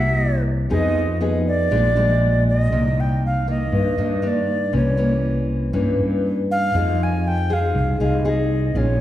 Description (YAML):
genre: bossa nova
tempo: 119 BPM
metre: 4/4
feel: straight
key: C minor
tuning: A4 = 441 Hz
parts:
  - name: reedy concert flute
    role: melody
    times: 0.0-9.0 s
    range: Db5 to Ab5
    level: -24 LUFS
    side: right 1 dB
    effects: none
  - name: nylon-string guitar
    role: accompaniment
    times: 0.0-9.0 s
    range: G2 to Ab4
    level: -22 LUFS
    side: left 2 dB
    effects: none
  - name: fretless electric bass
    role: bass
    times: 0.0-9.0 s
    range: Bb1 to G2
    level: -21 LUFS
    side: equal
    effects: none
room: wet recital hall reverb, RT60 1.6 s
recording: heard from further back in the room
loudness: -17 LUFS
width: side -13 dB against mid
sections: 0.0-2.7 A section; 2.7-9.0 B section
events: none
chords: 0.0 C7; 0.7 Fm7b5; 1.7 Bb7; 2.7 Cm9; 4.7 C7b9; 6.7 Fm7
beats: 0.20 | 0.71 1.21 1.71 2.21 | 2.72 3.22 3.72 4.23 | 4.73 5.23 5.74 6.24 | 6.74 7.25 7.75 8.25 | 8.76